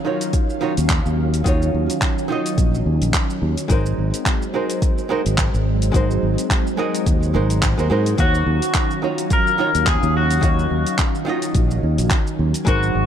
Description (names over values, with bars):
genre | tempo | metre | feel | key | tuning
sunset chillout | 107 BPM | 4/4 | swing 57% on 16ths | Eb dorian | A4 = 440 Hz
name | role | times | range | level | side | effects
archtop guitar, miked and amplified | accompaniment | 0.0-13.1 s | Eb3 to F5 | -25 LUFS | moving between left 3 dB and right 5 dB | auto-pan, digital delay
soft string machine | sustained chords | 0.0-13.1 s | Eb3 to F5 | -25 LUFS | equal | phaser, ensemble chorus
deep house drum kit | drums | 0.2-12.9 s | handclaps, hi-hat, shaker | -25 LUFS | right 1 dB | overdrive
electronic kick drum | drums | 0.3-12.8 s | none | -20 LUFS | equal | overdrive
fingered electric bass | bass | 0.8-13.1 s | Ab1 to Ab2 | -20 LUFS | equal | none
electric guitar at the edge of break-up | melody | 8.2-13.1 s | Gb4 to Bb4 | -21 LUFS | left 2 dB | wide subtle chorus, digital delay
room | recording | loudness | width
light reverb, digital ambience | dark, warm production | -16 LUFS | side -9 dB against mid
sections
0.0-13.1 A section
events
none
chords
0.0 Ebm9; 3.7 Ab9; 8.2 Ebm9